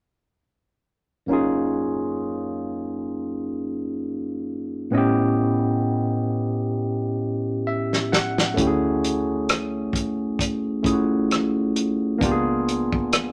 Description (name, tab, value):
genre	R&B, neo-soul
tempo	66 BPM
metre	4/4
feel	swing 56% on 16ths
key	unclear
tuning	A4 = 441 Hz
part	barky tine electric piano	accompaniment	1.3-13.3 s	F#2 to F#5	-24 LUFS	equal	phaser
part	warm soul drum kit	drums	7.9-13.3 s	hi-hat, kick drum, rim click, snare drum	-25 LUFS	equal	none
part	woody fretless electric bass	bass	8.6-13.3 s	C#2 to D2	-35 LUFS	equal	none
room	moderate studio reverb, RT60 0.6 s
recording	none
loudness	-24 LUFS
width	mono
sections	1.3-13.3 A section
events	tine electric piano fill 7.2-8.6; drum fill 7.7-8.6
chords	1.3 F#maj9; 4.9 A9; 8.6 Dmaj9; 12.2 C#7b9